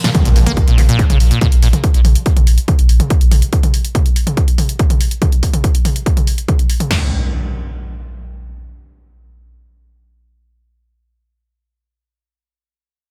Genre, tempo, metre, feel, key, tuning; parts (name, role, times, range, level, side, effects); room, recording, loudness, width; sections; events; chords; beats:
driving peak-time techno; 142 BPM; 4/4; straight; Bb minor; A4 = 440 Hz
acid bass, saw; riff; 0.0-1.7 s; Ab2 to Bb3; -20 LUFS; equal; subtle chorus, sidechain pumping, digital delay
techno drum kit; drums; 0.0-6.9 s; hi-hat, ride cymbal, snare drum, tambourine, toms; -23 LUFS; equal
techno drum kit; drums; 0.1-7.0 s; crash cymbal, kick drum, snare drum, toms; -15 LUFS; equal
impact; sound effects; 0.1-1.8, 6.9-11.1 s; -24 LUFS; equal
warm sub bass; bass; 0.3-3.4 s; Bb1; -15 LUFS; equal; overdrive, sidechain pumping, low-pass filter
digital ambience; -14 LUFS; mono
0.1-6.9 A section; 6.9-10.3 B section
impact 0.1-1.8
| 0.15 0.57 0.99 1.41 | 1.84 2.26 2.68 3.10 | 3.53 3.95 4.37 4.79 | 5.22 5.64 6.06 6.49 | 6.91 7.33 7.75 8.18 | 8.60 9.02 9.44 9.87